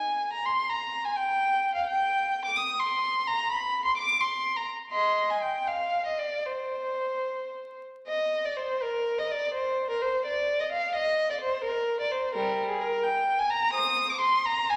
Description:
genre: classical, baroque-style suite movement for unaccompanied violin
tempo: 71-87 BPM (dotted quarters)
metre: 6/8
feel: rubato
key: C minor, Eb major from 8.1 s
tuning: A4 = 440 Hz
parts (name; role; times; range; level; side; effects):
- warm violin; solo; 0.0-14.8 s; G3 to Eb6; -28 LUFS; equal; none
room: wet recital hall reverb, RT60 1.8 s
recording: vinyl crackle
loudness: -28 LUFS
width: mono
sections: 0.0-8.1 A section; 8.1-14.8 A section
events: none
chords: none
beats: | 0.69 1.39 | 2.09 2.80 | 3.50 4.21 | 4.93 5.67 | 6.45 7.25 | 8.07 8.82 | 9.54 10.25 | 10.96 11.66 | 12.36 13.06 | 13.77 14.47

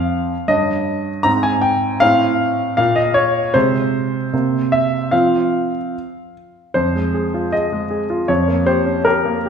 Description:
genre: classical-period piano sonatina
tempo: 78 BPM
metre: 2/4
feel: rubato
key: F minor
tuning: A4 = 441 Hz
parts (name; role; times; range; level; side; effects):
- clear concert grand piano; solo; 0.0-9.5 s; F2 to Bb5; -15 LUFS; equal; none
room: wet recital hall reverb, RT60 1.5 s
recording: heard from further back in the room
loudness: -15 LUFS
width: side -7 dB against mid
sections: 0.0-6.7 A section; 6.7-9.5 B section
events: none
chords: 0.5 Eb7/G; 1.2 Ab; 2.0 F/A; 2.8 N.C.; 3.5 Ab/C; 4.3 C7; 5.1 F5; 6.7 Fm; 8.3 Gm7b5/F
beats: | 0.48 1.24 | 2.01 2.78 | 3.55 4.33 | 5.12 5.93 | 6.74 7.52 | 8.28 9.05

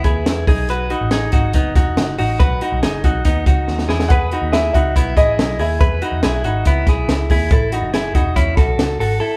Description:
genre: jangly indie pop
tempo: 141 BPM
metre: 4/4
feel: straight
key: E major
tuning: A4 = 440 Hz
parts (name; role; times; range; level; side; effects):
- dark upright piano; melody; 0.0-0.4, 4.1-7.3 s; B4 to F#5; -24 LUFS; equal; none
- direct-recorded clean electric guitar; arpeggios; 0.0-9.4 s; B3 to B4; -22 LUFS; equal; spring reverb
- vintage muted picked electric bass; bass; 0.0-9.2 s; E1 to E2; -24 LUFS; equal; none
- compact cocktail drum kit; drums; 0.0-9.1 s; hi-hat, kick drum, snare drum; -19 LUFS; equal; none
room: moderate large studio reverb, RT60 0.9 s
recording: band playing live in one room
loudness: -17 LUFS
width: mono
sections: 0.0-9.4 A section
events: drum fill 3.7-4.1; break 9.2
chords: 0.5 B; 3.9 E; 7.5 A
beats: 0.27 | 0.69 1.12 1.54 1.97 | 2.40 2.82 3.25 3.67 | 4.10 4.53 4.95 5.38 | 5.80 6.23 6.66 7.08 | 7.51 7.94 8.36 8.79 | 9.21

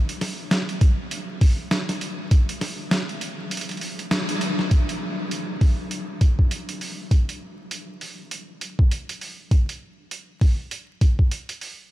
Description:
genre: glitch hop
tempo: 100 BPM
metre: 4/4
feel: swing 59% on 16ths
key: none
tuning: none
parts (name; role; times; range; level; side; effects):
- boom bap sampler-style drum kit; drums; 0.1-11.8 s; hi-hat, snare drum; -27 LUFS; equal; studio reverb
- electronic kick drum; drums; 0.8-11.3 s; none; -16 LUFS; equal; studio reverb
room: moderate huge ambient reverb, RT60 9.2 s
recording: dreamy mix soaked in reverb, vinyl crackle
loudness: -21 LUFS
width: side -16 dB against mid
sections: 0.0-4.7 A section; 4.7-11.9 B section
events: kick drops out 3.5-4.7; band accent 4.1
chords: none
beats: 0.51 1.11 1.71 | 2.31 2.91 3.51 4.11 | 4.71 5.31 5.91 6.51 | 7.11 7.71 8.31 8.91 | 9.51 10.11 10.71 11.31

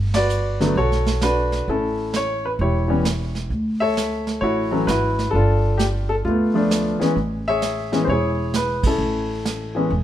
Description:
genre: jazz piano trio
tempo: 131 BPM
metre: 4/4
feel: swing 66% on 8ths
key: A major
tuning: A4 = 438 Hz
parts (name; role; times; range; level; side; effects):
- upright bass; bass; 0.0-10.0 s; E1 to D2; -23 LUFS; equal; none
- warm baby grand piano; melody; 0.1-10.0 s; D3 to E5; -21 LUFS; left 1 dB; none
- vintage brush drum kit; drums; 0.1-10.0 s; brushed snare drum, hi-hat, kick drum, ride cymbal, snare drum; -26 LUFS; right 3 dB; none
room: moderate large studio reverb, RT60 1.4 s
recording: minimal, uncompressed stereo recording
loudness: -18 LUFS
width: side -12 dB against mid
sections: 0.0-10.0 A section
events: band accent 0.1, 8.8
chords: 0.0 Gmaj9; 1.7 A7; 3.5 Dmaj9; 5.3 G9; 7.2 Amaj7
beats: 0.29 0.75 1.21 | 1.67 2.13 2.58 3.04 | 3.50 3.96 4.42 4.87 | 5.33 5.79 6.25 6.70 | 7.16 7.62 8.08 8.54 | 8.99 9.45 9.91

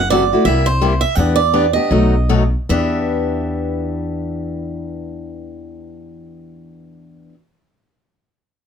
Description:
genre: acoustic string swing (jazz manouche)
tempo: 149-174 BPM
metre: 4/4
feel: swing 60% on 8ths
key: E minor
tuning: A4 = 440 Hz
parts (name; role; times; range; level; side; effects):
- picked swing-style acoustic guitar; melody; 0.0-7.3 s; C5 to F#5; -18 LUFS; right 6 dB; none
- upright bass; bass; 0.0-7.3 s; F#1 to E2; -20 LUFS; equal; none
- picked steel-string acoustic guitar; accompaniment; 0.1-7.3 s; B2 to G4; -20 LUFS; left 3 dB; none
room: light reverb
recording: none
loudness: -14 LUFS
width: side -7 dB against mid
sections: 0.0-2.7 A section; 2.7-5.9 B section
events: slowing down 0.0-2.7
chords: 0.5 C7; 1.2 Em7; 1.9 B7; 2.7 Em7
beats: 0.11 0.46 0.81 | 1.17 1.53 1.91 2.29 | 2.69 3.09 3.50 3.90 | 4.30 4.71 5.11 5.51

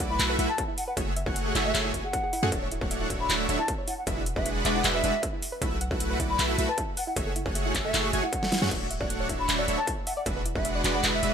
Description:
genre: future bass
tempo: 155 BPM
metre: 4/4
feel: half-time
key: F# minor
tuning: A4 = 440 Hz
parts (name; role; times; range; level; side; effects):
- soft round pluck; arpeggios; 0.0-11.3 s; E4 to F#5; -38 LUFS; right 2 dB; chorus, sidechain pumping, digital delay
- dense compressed supersaw; riff; 0.0-11.3 s; G#3 to G#5; -30 LUFS; right 1 dB; sidechain pumping
- warm 808-style bass; bass; 0.0-11.3 s; D1 to F#2; -32 LUFS; equal; sidechain pumping
- dubstep drum kit; drums; 0.0-11.3 s; crash cymbal, handclaps, hi-hat, snare drum; -30 LUFS; equal; none
- electronic kick drum; drums; 0.0-10.6 s; none; -33 LUFS; equal; distortion
- wooden flute; melody; 0.1-11.3 s; E5 to B5; -32 LUFS; left 1 dB; sidechain pumping, digital delay
room: light reverb, digital ambience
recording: none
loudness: -25 LUFS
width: side -7 dB against mid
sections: 0.0-11.3 A section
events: drum fill 8.4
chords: 0.0 B7sus4; 1.0 F#m9; 2.5 Dmaj9; 4.1 E9; 5.6 B7sus4; 7.2 F#m9; 8.7 Dmaj9; 10.3 E9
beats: 0.20 0.58 | 0.97 1.36 1.75 2.13 | 2.52 2.91 3.29 3.68 | 4.07 4.46 4.84 5.23 | 5.62 6.00 6.39 6.78 | 7.17 7.55 7.94 8.33 | 8.71 9.10 9.49 9.88 | 10.26 10.65 11.04

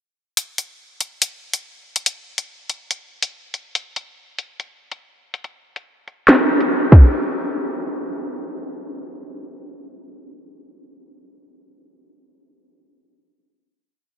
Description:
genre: hip hop, drill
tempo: 142 BPM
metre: 4/4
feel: half-time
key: none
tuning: none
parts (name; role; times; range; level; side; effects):
- drill drum kit; drums; 0.4-7.0 s; crash cymbal, handclaps, hi-hat, kick drum, snare drum; -14 LUFS; equal; none
room: wet huge ambient reverb, RT60 8.2 s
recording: dreamy mix soaked in reverb, low-pass filter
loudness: -17 LUFS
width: side -10 dB against mid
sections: 0.4-7.1 breakdown; 7.1-10.5 final hit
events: filter sweep 0.4-7.1; drums muted 6.7-7.1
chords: none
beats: | 0.37 0.79 1.22 1.64 | 2.06 2.48 2.91 3.33 | 3.75 4.17 4.60 5.02 | 5.44 5.87 6.29 6.71

